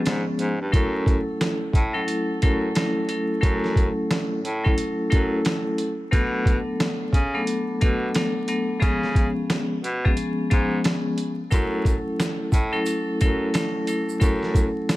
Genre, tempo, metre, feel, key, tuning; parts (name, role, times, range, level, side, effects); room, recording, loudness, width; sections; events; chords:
hip hop, boom-bap hip-hop; 89 BPM; 4/4; swing 62% on 16ths; F# minor; A4 = 441 Hz
vibraphone with hard mallets; accompaniment; 0.0-15.0 s; E#3 to A4; -24 LUFS; left 1 dB; high-pass filter, low-pass filter
breathy baritone saxophone; bass; 0.1-14.7 s; F#2 to C#3; -27 LUFS; equal
boom bap sampler-style drum kit; drums; 0.1-15.0 s; hi-hat, kick drum, snare drum; -22 LUFS; equal
tube shaker; percussion; 11.5-15.0 s; -43 LUFS; right 9 dB
light reverb, small room ambience; vinyl crackle; -20 LUFS; side -17 dB against mid
0.7-15.0 A section
break 0.0-0.7
0.0 C#7; 0.7 F#m7; 6.1 Bm7; 8.8 C#7; 11.5 F#m7